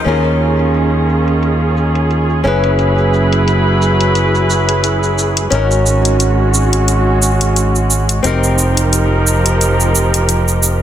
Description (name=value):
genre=sunset chillout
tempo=88 BPM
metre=4/4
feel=swing 56% on 16ths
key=unclear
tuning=A4 = 440 Hz
part: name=flamenco guitar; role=accompaniment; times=0.0-10.8 s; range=C4 to Cb5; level=-19 LUFS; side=moving between left 3 dB and right 5 dB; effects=auto-pan, digital delay, shimmer reverb
part: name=muted studio string section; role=sustained chords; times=0.0-10.8 s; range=Eb3 to Cb5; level=-16 LUFS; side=right 1 dB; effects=shimmer reverb
part: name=overdriven fingered electric bass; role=bass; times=0.1-10.8 s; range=F1 to Eb2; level=-14 LUFS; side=equal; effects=none
part: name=smooth R&B drum kit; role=drums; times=0.1-10.8 s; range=cabasa, crash cymbal, hi-hat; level=-19 LUFS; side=equal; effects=low-pass filter on hats, small room ambience, low-pass filter on perc, soft clipping on snare, low-pass filter on snare, low-pass filter on cymbals
room=light reverb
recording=dense, heavily limited modern master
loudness=-11 LUFS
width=side -10 dB against mid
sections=0.1-10.8 A section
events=filter sweep on drum 0.1-10.8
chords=0.1 Eb9sus4; 2.4 Gb9sus4; 5.5 Ab9sus4; 8.2 F9sus4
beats=| 0.06 0.74 1.43 2.11 | 2.79 3.47 4.15 4.84 | 5.52 6.20 6.88 7.56 | 8.24 8.93 9.61 10.29